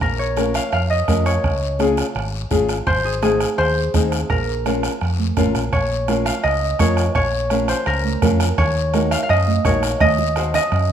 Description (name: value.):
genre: latin, cumbia.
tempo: 168 BPM.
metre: 4/4.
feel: straight.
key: Bb minor.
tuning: A4 = 441 Hz.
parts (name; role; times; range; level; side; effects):
concert harp; melody; 0.0-10.9 s; Ab4 to F5; -21 LUFS; equal; none.
fingered electric bass; bass; 0.0-10.9 s; Ab1 to Gb2; -22 LUFS; equal; none.
bombo; percussion; 0.0-10.9 s; none; -24 LUFS; right 3 dB; none.
guiro; percussion; 0.0-10.9 s; none; -33 LUFS; left 9 dB; none.
nylon-string guitar; accompaniment; 0.4-10.6 s; C4 to C5; -23 LUFS; left 7 dB; none.
congas; percussion; 0.4-10.9 s; none; -26 LUFS; right 9 dB; none.
room: moderate large studio reverb, RT60 1.0 s.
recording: minimal, uncompressed stereo recording.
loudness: -16 LUFS.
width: side -9 dB against mid.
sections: 0.0-5.7 A section; 5.7-10.9 B section.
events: drum fill 10.0-10.9.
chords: 0.0 Bbm; 1.4 Db; 2.9 Ab; 4.3 Bbm; 8.6 Ebm.